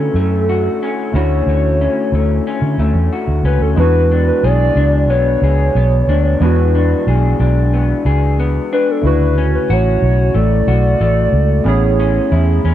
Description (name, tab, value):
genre	indie pop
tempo	91 BPM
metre	4/4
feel	straight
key	unclear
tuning	A4 = 439 Hz
part	warbly nostalgic lead	melody	0.0-12.3 s	A4 to D5	-18 LUFS	equal	wide subtle chorus
part	electric guitar through a small old amp	accompaniment	0.0-12.7 s	A2 to G#4	-20 LUFS	left 5 dB	analog chorus, warbly pitch drift
part	warbly lo-fi synth keys	accompaniment	0.0-12.7 s	C#3 to G#4	-22 LUFS	right 4 dB	chorus
part	vintage muted fingered electric bass	bass	0.0-12.7 s	A1 to D3	-14 LUFS	equal	none
room	digital ambience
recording	dry, close 1970s-style studio recording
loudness	-12 LUFS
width	side -12 dB against mid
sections	0.0-3.8 A section; 3.8-12.7 B section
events	none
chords	0.0 Dmaj7; 3.8 E7; 9.0 Dmaj7; 11.7 Amaj7